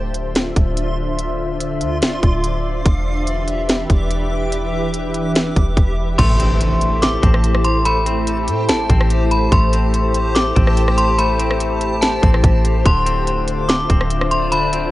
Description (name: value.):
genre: hip hop, atmospheric cloud-rap.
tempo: 144 BPM.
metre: 4/4.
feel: half-time.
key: A minor.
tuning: A4 = 440 Hz.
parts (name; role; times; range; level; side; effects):
glassy FM pad; sustained chords; 0.0-14.9 s; D3 to E5; -22 LUFS; left 1 dB; ensemble chorus, built-in reverb, sidechain pumping.
soft 808-style bass; bass; 0.0-14.9 s; D1 to A2; -19 LUFS; equal; none.
backwards swelling texture; texture; 0.0-14.9 s; F4 to D6; -28 LUFS; equal; built-in reverb.
trap drum kit; drums; 0.1-14.8 s; crash cymbal, hi-hat, kick drum, rim click, snare drum; -17 LUFS; equal; none.
metallic FM bell; melody; 6.2-14.9 s; A5 to D6; -20 LUFS; left 1 dB; chorus, digital delay.
semi-hollow electric guitar; arpeggios; 6.2-14.9 s; D3 to C4; -27 LUFS; left 4 dB; digital delay.
impact; sound effects; 6.2-7.9 s; none; -28 LUFS; equal; none.
room: digital ambience.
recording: worn, warbling old tape, cassette tape, warbly pitch drift, nothing above 10.9 kHz.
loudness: -14 LUFS.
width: side -16 dB against mid.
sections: 0.0-6.2 A section; 6.2-14.9 B section.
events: impact 6.2-7.9.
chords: 0.0 Dm7; 2.9 Em7; 6.2 Am7; 12.9 Dm7.